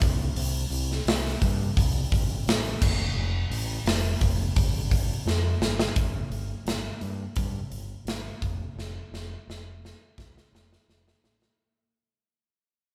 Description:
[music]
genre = classic rock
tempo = 86 BPM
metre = 4/4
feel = straight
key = unclear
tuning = A4 = 440 Hz
[part]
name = growling fingered electric bass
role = bass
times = 0.0-11.5 s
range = F1 to G2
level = -32 LUFS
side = equal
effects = overdrive
[part]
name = big rock drum kit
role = drums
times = 0.0-11.6 s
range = crash cymbal, hi-hat, kick drum, snare drum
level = -29 LUFS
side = equal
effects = none
[sound]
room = light reverb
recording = band playing live in one room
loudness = -27 LUFS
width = mono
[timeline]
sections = 0.0-6.0 A section; 6.0-11.6 B section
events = drum fill 5.3-6.0, 8.8-11.6; fade-out 6.0-11.6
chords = none

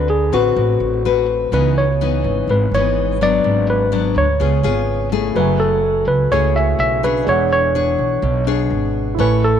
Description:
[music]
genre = bossa nova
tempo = 125 BPM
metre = 4/4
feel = straight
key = C# minor, F# minor from 5.4 s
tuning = A4 = 440 Hz
[part]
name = tine electric piano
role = melody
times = 0.0-9.6 s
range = F#4 to E5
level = -18 LUFS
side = equal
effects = none
[part]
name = nylon-string guitar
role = accompaniment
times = 0.0-9.6 s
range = G#2 to C#5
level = -20 LUFS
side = left 9 dB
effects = none
[part]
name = upright bass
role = bass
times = 0.0-9.6 s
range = E1 to D2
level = -20 LUFS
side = right 3 dB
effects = none
[part]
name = warm grand piano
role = accompaniment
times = 5.3-9.6 s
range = D4 to G#5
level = -25 LUFS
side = right 13 dB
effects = none
[sound]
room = moderate plate reverb, RT60 3.4 s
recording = 1960s-style stereo with parts hard left and right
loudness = -14 LUFS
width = side -8 dB against mid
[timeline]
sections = 0.0-5.4 A section; 5.4-9.6 B section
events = none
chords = 0.0 D6; 1.5 C#m9; 3.4 G#m7b5; 4.4 C#7; 5.4 F#m9; 7.3 E13

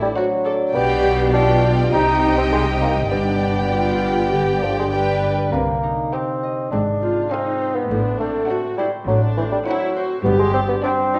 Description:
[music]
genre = cinematic, playful, whimsical film cue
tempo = 102 BPM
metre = 4/4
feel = straight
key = unclear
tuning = A4 = 440 Hz
[part]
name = mellow bassoon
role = accompaniment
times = 0.0-11.2 s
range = E3 to Eb4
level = -24 LUFS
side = equal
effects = none
[part]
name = rich studio viola section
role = accompaniment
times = 0.0-11.2 s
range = C4 to B4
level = -27 LUFS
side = equal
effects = none
[part]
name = concert harp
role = arpeggios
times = 0.0-11.2 s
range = G2 to Eb5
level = -29 LUFS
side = equal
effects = none
[part]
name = rich chamber double bass section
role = bass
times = 0.0-10.7 s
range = G1 to C2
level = -28 LUFS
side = equal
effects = none
[part]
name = rich symphonic cello section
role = bass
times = 0.0-10.7 s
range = G2 to C3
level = -26 LUFS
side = equal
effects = none
[part]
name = rich chamber violin section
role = melody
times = 0.2-11.2 s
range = D5 to G5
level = -29 LUFS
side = equal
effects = none
[part]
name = rich chamber violin section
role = second line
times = 0.2-11.2 s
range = D4 to Eb5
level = -28 LUFS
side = equal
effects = none
[sound]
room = moderate scoring stage reverb, RT60 1.6 s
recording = worn, warbling old tape, cassette tape, warbly pitch drift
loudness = -19 LUFS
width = mono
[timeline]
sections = 0.0-11.2 A section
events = none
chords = 0.0 D7/A; 0.8 G/B; 1.9 Cm; 3.1 G; 5.5 Cm; 6.7 Fm/Ab; 7.9 D7/A; 10.2 G5

